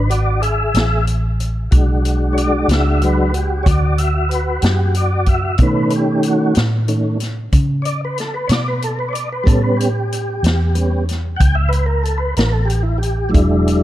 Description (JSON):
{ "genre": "slow blues", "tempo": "62 BPM (dotted quarters)", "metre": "12/8", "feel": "straight", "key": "unclear", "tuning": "A4 = 445 Hz", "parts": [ { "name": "tonewheel organ", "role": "sustained chords", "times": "0.0-13.8 s", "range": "D#3 to G5", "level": "-19 LUFS", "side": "equal", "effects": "slow rotary speaker, chorus vibrato" }, { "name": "vintage muted fingered electric bass", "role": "bass", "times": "0.0-13.8 s", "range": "E1 to C#3", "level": "-18 LUFS", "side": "equal", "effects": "none" }, { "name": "vintage drum kit", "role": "drums", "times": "0.1-13.8 s", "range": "hi-hat, kick drum, snare drum", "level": "-18 LUFS", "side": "equal", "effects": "none" } ], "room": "light reverb", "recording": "dark, warm production", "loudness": "-14 LUFS", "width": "side -14 dB against mid", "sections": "0.0-13.8 A section", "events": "tonewheel organ solo 0.0-13.8", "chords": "0.0 E9; 5.6 B9; 9.5 A9" }